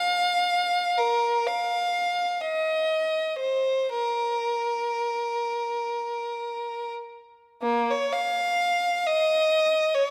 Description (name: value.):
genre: classical, free, expressive piece for unaccompanied violin.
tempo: 24-46 BPM (dotted quarters).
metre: 6/8.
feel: rubato.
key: Bb minor.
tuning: A4 = 444 Hz.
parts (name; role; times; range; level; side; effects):
rich violin; solo; 0.0-10.1 s; Bb3 to F5; -25 LUFS; equal; none.
room: moderate concert hall reverb, RT60 2.1 s.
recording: none.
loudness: -26 LUFS.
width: mono.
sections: 0.0-7.6 A section; 7.6-10.1 A section.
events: none.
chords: none.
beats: | 0.98 2.40 | 3.94 5.59 | 7.62 9.06.